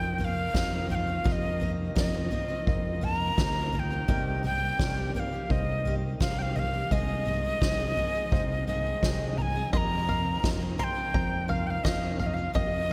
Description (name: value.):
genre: indie folk with a building arrangement.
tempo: 85 BPM.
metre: 4/4.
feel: straight.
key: unclear.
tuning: A4 = 440 Hz.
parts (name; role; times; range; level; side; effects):
breathy mellow mid whistle; melody; 0.0-12.9 s; Eb5 to C6; -34 LUFS; equal; none.
picked steel-string acoustic guitar; accompaniment; 0.0-12.9 s; F2 to Ab4; -41 LUFS; equal; subtle chorus.
warm upright piano; accompaniment; 0.0-12.9 s; F1 to F5; -43 LUFS; equal; none.
fingered electric bass; bass; 0.0-12.9 s; C2 to F2; -34 LUFS; equal; none.
soft-mallet drum kit; drums; 0.2-12.7 s; kick drum, snare drum, toms; -32 LUFS; equal; none.
bluegrass banjo; arpeggios; 9.7-12.9 s; Eb5 to C6; -40 LUFS; equal; none.
room: moderate lush hall reverb, RT60 2.8 s.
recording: bright 1980s-style digital production.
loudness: -28 LUFS.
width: mono.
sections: 0.0-12.9 A section.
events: none.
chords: 0.0 F7sus4; 4.1 Cm7; 6.9 Ab/C; 9.7 F7sus4.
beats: 0.55 | 1.26 1.97 2.67 3.38 | 4.09 4.79 5.50 6.21 | 6.91 7.62 8.32 9.03 | 9.73 10.44 11.14 11.85 | 12.55.